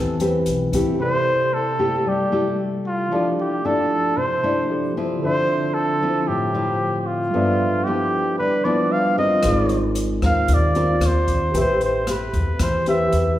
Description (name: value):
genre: bossa nova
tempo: 114 BPM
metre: 4/4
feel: straight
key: C major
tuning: A4 = 440 Hz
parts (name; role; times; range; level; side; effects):
- warm flugelhorn; melody; 0.0-13.4 s; F4 to F5; -22 LUFS; right 1 dB; none
- nylon-string guitar; accompaniment; 0.0-13.4 s; G2 to B4; -22 LUFS; left 2 dB; none
- tine electric piano; accompaniment; 0.0-13.4 s; C3 to E5; -28 LUFS; right 2 dB; medium stereo tremolo
- upright bass; bass; 0.0-0.7, 9.4-13.4 s; Ab1 to E2; -23 LUFS; equal; none
- open jazz drum kit; drums; 0.2-0.9, 9.4-13.2 s; hi-hat, kick drum, rim click; -27 LUFS; equal; none
room: wet recital hall reverb, RT60 1.5 s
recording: recorded in a church or concert hall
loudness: -18 LUFS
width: side -13 dB against mid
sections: 1.0-13.4 A section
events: none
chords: 0.0 Am9; 1.0 C6; 3.1 Fmaj13; 5.2 Dm9; 7.3 G13; 9.4 Ab69; 11.5 Am9